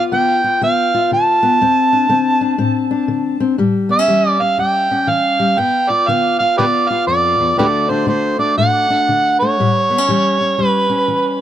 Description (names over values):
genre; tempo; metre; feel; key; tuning
acoustic country blues, solo or duo; 121 BPM; 4/4; swing 63% on 8ths; unclear; A4 = 438 Hz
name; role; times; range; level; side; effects
overdriven harmonica; melody; 0.0-11.3 s; G4 to A5; -14 LUFS; right 2 dB; tape echo
fingerpicked steel-string acoustic guitar; accompaniment; 0.0-11.4 s; D2 to F#4; -17 LUFS; left 4 dB; none
room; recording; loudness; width
light reverb; close, detailed microphones; -13 LUFS; side -11 dB against mid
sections
0.0-11.4 A section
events
none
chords
0.0 G7; 1.6 D5; 3.6 A7; 5.6 G7; 7.6 D; 9.6 A7